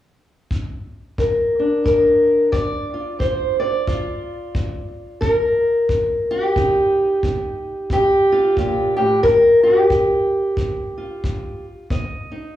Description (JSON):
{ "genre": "acoustic country blues, solo or duo", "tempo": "90 BPM", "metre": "4/4", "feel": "swing 60% on 8ths", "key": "G minor", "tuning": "A4 = 440 Hz", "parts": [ { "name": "kick drum", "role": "drums", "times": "0.5-12.1 s", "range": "none", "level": "-26 LUFS", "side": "left 1 dB", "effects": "none" }, { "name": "fingerpicked steel-string acoustic guitar", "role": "melody", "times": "1.2-12.6 s", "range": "G2 to Eb5", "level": "-16 LUFS", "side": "equal", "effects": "slapback echo" } ], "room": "light reverb", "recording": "live gig heard through the venue's PA, club reverb, small room ambience", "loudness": "-16 LUFS", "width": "side -13 dB against mid", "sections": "0.0-1.2 A section; 1.2-12.6 B section", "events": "none", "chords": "0.0 N.C.; 1.2 Gm7; 6.6 Cm; 9.2 G7(no3); 11.9 Cm" }